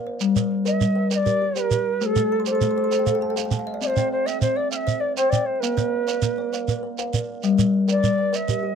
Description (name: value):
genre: southern african traditional, mbira-style interlocking cycle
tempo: 133 BPM (dotted quarters)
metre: 12/8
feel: straight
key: G equiheptatonic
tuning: A4 = 440 Hz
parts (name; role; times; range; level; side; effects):
- kalimba; arpeggios; 0.0-8.8 s; G3 to G5; -25 LUFS; left 6 dB; none
- kalimba; arpeggios; 0.0-8.8 s; G3 to D6; -28 LUFS; right 4 dB; none
- shekere; percussion; 0.2-8.6 s; none; -25 LUFS; right 5 dB; none
- mellow Native American-style cedar flute; melody; 0.7-8.8 s; A4-30c to F5-38c; -23 LUFS; equal; none
room: little or no reverb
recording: dry, close 1970s-style studio recording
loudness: -20 LUFS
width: side -7 dB against mid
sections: 0.2-8.8 A section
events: kalimba fill 2.2-3.8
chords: 0.2 Gm; 2.0 Am; 3.8 C; 5.6 Bb; 7.4 Gm